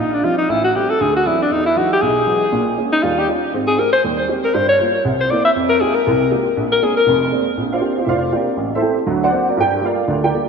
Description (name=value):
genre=jazz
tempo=238 BPM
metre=4/4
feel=swing 60% on 8ths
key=unclear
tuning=A4 = 441 Hz
part: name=breathy alto saxophone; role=melody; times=0.0-7.3 s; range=D4 to E5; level=-16 LUFS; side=left 2 dB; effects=diffuse ambient delay
part: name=warm upright piano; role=accompaniment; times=0.0-10.5 s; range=F1 to G5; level=-18 LUFS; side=right 2 dB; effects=ensemble chorus
room=wet lush hall reverb, RT60 2.8 s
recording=dreamy mix soaked in reverb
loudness=-14 LUFS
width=side -6 dB against mid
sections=0.0-7.6 A section; 7.6-10.5 B section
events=none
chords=0.5 Am7; 1.0 D9; 1.5 Emaj9; 2.5 Bbm7; 3.0 Eb9; 3.5 Abmaj7; 4.5 Gm7; 5.0 C7; 5.5 Fm11; 6.5 Bb9; 7.6 Bb69; 8.6 Am7; 9.1 Daug7; 9.6 Gm9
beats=0.24 | 0.49 0.74 1.00 1.25 | 1.50 1.75 2.01 2.26 | 2.51 2.77 3.02 3.27 | 3.52 3.77 4.03 4.28 | 4.53 4.78 5.04 5.29 | 5.54 5.79 6.04 6.30 | 6.55 6.80 7.05 7.30 | 7.56 7.81 8.06 8.31 | 8.57 8.82 9.07 9.32 | 9.57 9.82 10.08 10.33